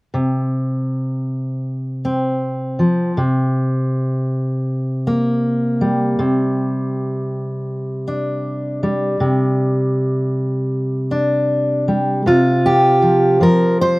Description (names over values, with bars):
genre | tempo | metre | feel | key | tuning
folk, solo fingerstyle acoustic guitar | 79 BPM | 4/4 | straight | unclear | A4 = 442 Hz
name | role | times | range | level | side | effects
fingerpicked steel-string acoustic guitar | solo | 0.1-14.0 s | C3 to C5 | -16 LUFS | equal | none
room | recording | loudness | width
light reverb | recorded outdoors, with no room sound | -16 LUFS | side -22 dB against mid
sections
0.1-12.3 A section; 12.3-14.0 B section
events
none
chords
0.1 F5/C; 3.2 C5; 6.2 Csus2; 12.3 Fsus2/C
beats
| 0.15 0.91 1.67 2.42 | 3.18 3.93 4.68 5.43 | 6.19 6.94 7.70 8.45 | 9.21 9.97 10.72 11.49 | 12.26 13.03 13.79